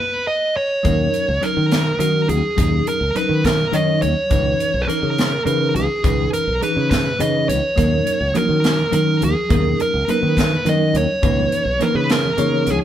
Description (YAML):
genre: electric jazz fusion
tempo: 69 BPM (dotted quarters)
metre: 6/8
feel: straight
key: unclear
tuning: A4 = 439 Hz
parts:
  - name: dark smooth lead guitar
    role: melody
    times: 0.0-12.8 s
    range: G#4 to D#5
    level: -20 LUFS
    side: right 1 dB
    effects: overdrive
  - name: bell-like tine electric piano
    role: accompaniment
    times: 0.8-12.8 s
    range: E3 to C#5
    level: -23 LUFS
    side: left 1 dB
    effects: fast stereo tremolo
  - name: modern bright fingered electric bass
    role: bass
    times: 0.8-12.8 s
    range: B1 to D#3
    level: -21 LUFS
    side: equal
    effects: none
  - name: crisp fusion drum kit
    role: drums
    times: 0.8-12.8 s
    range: hi-hat, kick drum, snare drum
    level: -22 LUFS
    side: equal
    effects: none
  - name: congas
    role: percussion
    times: 7.8-12.8 s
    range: none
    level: -26 LUFS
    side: right 3 dB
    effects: none
room: moderate stone room reverb, RT60 1.4 s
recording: band playing live in one room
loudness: -16 LUFS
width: side -10 dB against mid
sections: 0.8-12.8 A section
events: band accent 0.0-0.8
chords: 0.0 C#7sus2; 0.8 D#m7; 4.3 C#m9; 7.8 D#m7; 11.2 C#m9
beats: | 0.85 1.72 | 2.58 3.44 | 4.31 5.17 | 6.04 6.90 | 7.77 8.63 | 9.50 10.37 | 11.23 12.10